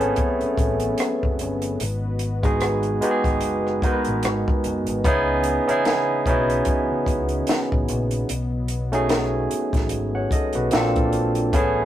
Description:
R&B, neo-soul; 74 BPM; 4/4; swing 56% on 16ths; C# minor; A4 = 439 Hz
barky tine electric piano; accompaniment; 0.0-11.8 s; G#3 to F#5; -21 LUFS; right 1 dB; overdrive
warm analog pad; sustained chords; 0.0-11.8 s; C#3 to D#5; -33 LUFS; left 4 dB; chorus
deep dub fingered electric bass; bass; 0.0-11.8 s; F#1 to C#2; -27 LUFS; equal
compact cocktail drum kit; drums; 0.0-11.7 s; hi-hat, kick drum, rim click, snare drum; -24 LUFS; equal
light reverb; rough rehearsal-room recording; -20 LUFS; side -12 dB against mid
0.0-11.8 A section
0.0 Amaj9; 1.8 G#m7; 5.0 C#m9; 8.3 B13; 10.7 A#maj9

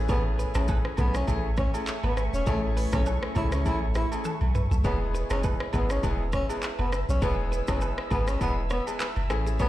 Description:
afrobeats; 101 BPM; 4/4; swing 55% on 16ths; A4 = 440 Hz
bright concert grand piano; accompaniment; 0.0-9.7 s; G#3 to G#4; -34 LUFS; left 4 dB
deep dark ambient pad; sustained chords; 0.0-9.7 s; A3 to E6; -37 LUFS; right 1 dB; chorus, built-in reverb
electric guitar at the edge of break-up; riff; 0.0-9.7 s; G#4 to C#5; -38 LUFS; right 2 dB; digital delay
punchy sub bass; bass; 0.0-9.7 s; E1 to C#2; -27 LUFS; equal
breathy tenor saxophone; melody; 0.1-9.7 s; A3 to E4; -33 LUFS; equal; digital delay
afro-pop drum kit; drums; 0.1-9.7 s; handclaps, hi-hat, kick drum, rim click, shaker, toms; -30 LUFS; equal
agogo bells and woodblock; percussion; 0.1-9.7 s; -40 LUFS; right 7 dB
little or no reverb; played on a big sound system in a bare room, large studio reverb; -24 LUFS; side -14 dB against mid
0.0-9.7 A section
drum fill 4.3-4.8
0.0 Amaj7; 4.8 E

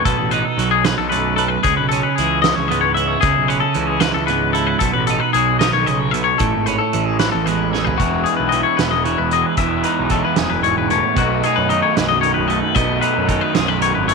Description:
math rock and midwest emo; 76 BPM (dotted quarters); 6/8; straight; A4 = 440 Hz
twelve-string electric guitar; accompaniment; 0.0-14.1 s; E2 to B4; -20 LUFS; right 11 dB
twangy electric guitar; arpeggios; 0.0-14.1 s; F#4 to E5; -18 LUFS; left 14 dB
fuzz picked electric bass; bass; 0.1-14.1 s; E1 to F#2; -24 LUFS; equal; overdrive
loose indie drum kit; drums; 0.1-14.1 s; hi-hat, kick drum, snare drum, toms; -23 LUFS; right 4 dB
raw garage guitar; riff; 8.0-14.1 s; B2 to E4; -22 LUFS; equal; overdrive, phaser
light reverb, small room reverb; 1960s-style stereo with parts hard left and right; -15 LUFS; side -4 dB against mid
0.0-8.0 A section; 8.0-14.1 B section
drum fill 7.7
0.0 B7; 1.6 C#m7; 4.8 B13; 6.4 Amaj7; 8.0 Emaj9; 11.2 B7

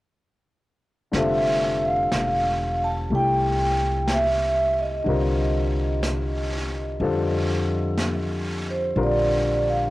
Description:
jazz ballad; 61 BPM; 4/4; swing 68% on 8ths; F major; A4 = 444 Hz
warm concert grand piano; accompaniment; 1.1-9.9 s; D3 to Bb4; -26 LUFS; left 3 dB
upright bass; bass; 1.1-9.9 s; E1 to F2; -26 LUFS; right 1 dB; transformer saturation
jazz brush drum kit; drums; 1.1-9.9 s; brushed snare drum, hi-hat, snare drum; -32 LUFS; equal; cassette tape
vibraphone with soft mallets; melody; 1.2-9.9 s; C5 to A5; -24 LUFS; right 1 dB; cassette tape
light reverb; home recording on cassette; -21 LUFS; side -18 dB against mid
1.1-9.9 A section
1.1 Fmaj9; 5.1 Cm7; 7.0 F7; 9.0 Bbadd9

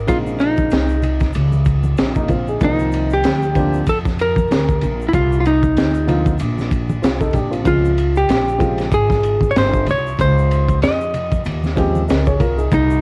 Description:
hip hop, jazz-hop; 95 BPM; 4/4; swing 57% on 16ths; A4 = 442 Hz
hollow-body jazz guitar; melody; 0.0-13.0 s; Eb4 to Eb5; -21 LUFS; equal; cassette tape
upright bass; bass; 0.0-13.0 s; G1 to F2; -22 LUFS; equal
dark upright piano; accompaniment; 0.1-12.9 s; Db3 to Eb5; -24 LUFS; equal; cassette tape
crunchy breakbeat drum kit; drums; 0.1-12.9 s; hi-hat, kick drum, ride cymbal, snare drum; -23 LUFS; equal
egg shaker and congas; percussion; 0.1-13.0 s; -28 LUFS; equal
little or no reverb; home recording on cassette, vinyl crackle; -17 LUFS; mono
0.0-13.0 A section
0.0 Bbm11; 2.6 Cm11; 7.7 Dbmaj7

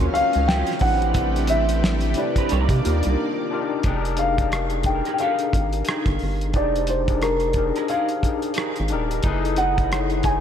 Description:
R&B, neo-soul; 89 BPM; 4/4; swing 61% on 16ths; A4 = 439 Hz
dark concert grand piano; melody; 0.0-10.4 s; Bb4 to G#5; -24 LUFS; left 1 dB; ping-pong delay
electric guitar through a small old amp; second line; 0.0-8.8 s; Gb3 to D5; -32 LUFS; right 8 dB; ensemble chorus
overdriven tine electric piano; accompaniment; 0.0-10.4 s; C4 to C#5; -26 LUFS; left 5 dB; ensemble chorus
lush unison pad; sustained chords; 0.0-3.8 s; C3 to F5; -31 LUFS; right 1 dB; chorus
clear trombone section; stabs; 0.0-3.5 s; E3 to D4; -33 LUFS; right 9 dB
rubbery square bass; bass; 0.0-10.4 s; Eb1 to C3; -24 LUFS; equal
cloth-damped thuddy drum kit; drums; 0.1-10.4 s; hi-hat, kick drum, rim click, snare drum; -25 LUFS; equal
light reverb, small room ambience; -19 LUFS; side -9 dB against mid
0.0-3.8 A section; 3.8-10.4 B section
break 3.2-3.8
0.0 Ebm9; 0.8 Am9; 2.5 Cm9; 3.8 Fm11; 9.2 F#m11

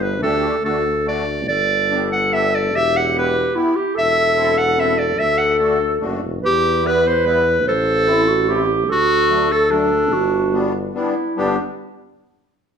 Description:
alpine folk, alpine dance band; 146 BPM; 3/4; straight; G major; A4 = 440 Hz
bright clarinet; melody; 0.0-11.6 s; D4 to F#5; -18 LUFS; right 1 dB
mellow tuba; bass; 0.0-11.6 s; E1 to E2; -24 LUFS; left 1 dB
musette accordion; accompaniment; 0.2-11.6 s; F#3 to A4; -25 LUFS; left 3 dB
mellow clarinet; second line; 1.5-11.6 s; D4 to C5; -20 LUFS; right 1 dB
wet large studio reverb, RT60 1.1 s; band playing live in one room; -15 LUFS; side -7 dB against mid
0.0-11.4 A section; 11.4-12.6 B section
0.2 Dsus4; 0.6 D; 1.5 G; 2.7 Em; 4.0 Am/E; 5.2 Dadd9; 6.4 Em; 7.7 Am; 8.9 D; 10.1 G

